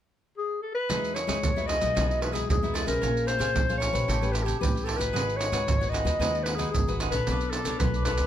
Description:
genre	samba and choro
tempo	113 BPM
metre	4/4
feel	straight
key	E major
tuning	A4 = 440 Hz
part	mellow clarinet	melody	0.4-8.3 s	G4 to D#5	-29 LUFS	left 2 dB	none
part	cavaquinho	accompaniment	0.9-8.3 s	D4 to G#5	-36 LUFS	right 6 dB	none
part	nylon-string guitar	accompaniment	0.9-8.3 s	B2 to C#5	-34 LUFS	left 5 dB	none
part	upright bass	bass	0.9-8.3 s	G#1 to E3	-30 LUFS	equal	none
part	maracas, surdo and pandeiro	percussion	0.9-8.3 s	none	-29 LUFS	right 3 dB	none
room	light reverb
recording	none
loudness	-24 LUFS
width	side -10 dB against mid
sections	0.9-8.3 A section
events	none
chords	0.0 N.C.; 0.9 Emaj9; 3.0 A#m9; 4.1 A9; 5.1 G#m7; 7.3 Bm9

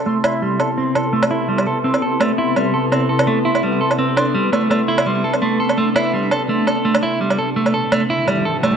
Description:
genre	half-time drum and bass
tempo	168 BPM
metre	4/4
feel	half-time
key	A minor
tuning	A4 = 442 Hz
part	bowed-like drone	sustained chords	0.0-8.8 s	C3 to A4	-21 LUFS	left 1 dB	built-in reverb
part	clean electric guitar	arpeggios	0.0-8.8 s	G3 to A4	-19 LUFS	right 2 dB	spring reverb, low-pass filter, tape echo
part	pulsing gated texture	texture	0.0-8.8 s	C6	-26 LUFS	right 2 dB	chorus, built-in reverb
part	woodblock	drums	0.2-8.7 s	none	-20 LUFS	right 2 dB	studio reverb
part	riser	sound effects	7.8-8.8 s	none	-26 LUFS	equal	none
room	wet digital room reverb, RT60 1.3 s, digital ambience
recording	dark, warm production, nothing above 10.6 kHz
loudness	-15 LUFS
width	side -7 dB against mid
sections	0.0-8.8 A section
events	filter sweep on clean electric guitar 0.0-8.8; riser 7.8-8.8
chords	0.0 Amadd9

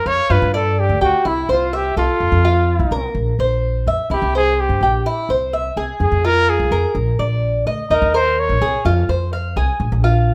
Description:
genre	latin, Cuban son and guajira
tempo	126 BPM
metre	4/4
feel	straight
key	F minor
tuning	A4 = 438 Hz
part	breathy trumpet	melody	0.0-8.9 s	E4 to Db5	-21 LUFS	equal	none
part	Cuban tres	arpeggios	0.0-10.3 s	Eb4 to F5	-22 LUFS	equal	none
part	upright bass	bass	0.0-10.3 s	Bb1 to G2	-21 LUFS	equal	none
room	moderate large studio reverb, RT60 0.9 s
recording	none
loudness	-17 LUFS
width	mono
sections	0.0-10.3 A section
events	trumpet solo 0.0-10.3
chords	0.3 G5; 1.3 C; 2.2 F; 3.2 Bbsus2; 4.1 C; 6.0 Fm; 7.0 Bb; 7.9 Eb5; 8.9 Fm; 9.8 Bb5

